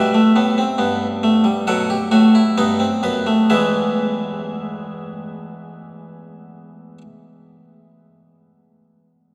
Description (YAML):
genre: classical, baroque-style 4-part fugue for harpsichord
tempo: 61-72 BPM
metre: 4/4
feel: straight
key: unclear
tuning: A4 = 441 Hz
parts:
  - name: harpsichord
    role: solo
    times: 0.0-7.0 s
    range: E2 to F#5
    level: -18 LUFS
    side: equal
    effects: none
room: wet cathedral reverb, RT60 6.5 s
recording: in a vast, echoing space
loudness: -17 LUFS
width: mono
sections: 0.0-3.5 A section; 3.5-7.4 B section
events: slowing down 0.0-3.5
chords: 0.0 Em; 1.7 B7; 3.5 E